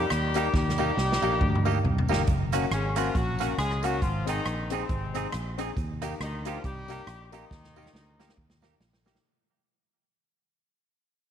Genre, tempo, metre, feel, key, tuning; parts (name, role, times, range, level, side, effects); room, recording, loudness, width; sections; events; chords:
ska; 138 BPM; 4/4; swing 58% on 8ths; Eb major; A4 = 436 Hz
clear horn section; melody; 0.0-8.8 s; C3 to Ab4; -31 LUFS; left 2 dB
semi-hollow electric guitar; accompaniment; 0.0-9.2 s; Bb3 to Ab4; -34 LUFS; right 11 dB; spring reverb, tape echo
warm upright piano; stabs; 0.0-9.2 s; Bb3 to Ab4; -34 LUFS; left 10 dB; tube saturation
fingered electric bass; bass; 0.0-9.2 s; Gb1 to Eb2; -30 LUFS; equal
swinging big-band drum kit; drums; 0.1-9.2 s; hi-hat, kick drum, rim click, snare drum, toms; -30 LUFS; right 1 dB
tambourine; percussion; 0.3-9.1 s; -49 LUFS; right 14 dB
light reverb, studio ambience; 1960s-style stereo with parts hard left and right; -25 LUFS; side -9 dB against mid
0.0-2.3 A section; 2.3-9.2 B section
drum fill 0.5-2.3, 7.5-9.2; fade-out 2.3-9.2
0.0 Eb; 2.3 Gb; 4.0 Ab; 5.8 Eb